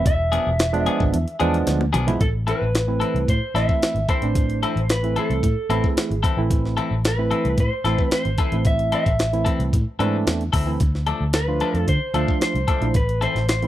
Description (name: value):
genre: straight-eighth soul blues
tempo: 112 BPM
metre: 4/4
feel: straight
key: A harmonic minor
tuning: A4 = 440 Hz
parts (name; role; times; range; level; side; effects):
- electric guitar through a small old amp; melody; 0.0-13.7 s; A4 to E5; -25 LUFS; equal; none
- barky tine electric piano; accompaniment; 0.0-13.7 s; E3 to F4; -25 LUFS; right 4 dB; wide subtle chorus
- vintage muted fingered electric bass; bass; 0.0-13.7 s; E1 to D3; -23 LUFS; equal; none
- jungle sampler-style drum kit; drums; 0.1-13.7 s; hi-hat, kick drum, snare drum, toms; -22 LUFS; equal; none
- clean electric guitar; stabs; 0.3-13.4 s; E3 to A4; -25 LUFS; left 6 dB; none
room: little or no reverb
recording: dry, close 1970s-style studio recording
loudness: -18 LUFS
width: side -13 dB against mid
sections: 0.0-2.2 A section; 2.2-13.7 B section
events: clean electric guitar solo 0.0-2.2; drum fill 1.7-2.2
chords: 0.1 E7b9; 2.2 Am; 10.8 Dm; 12.9 Am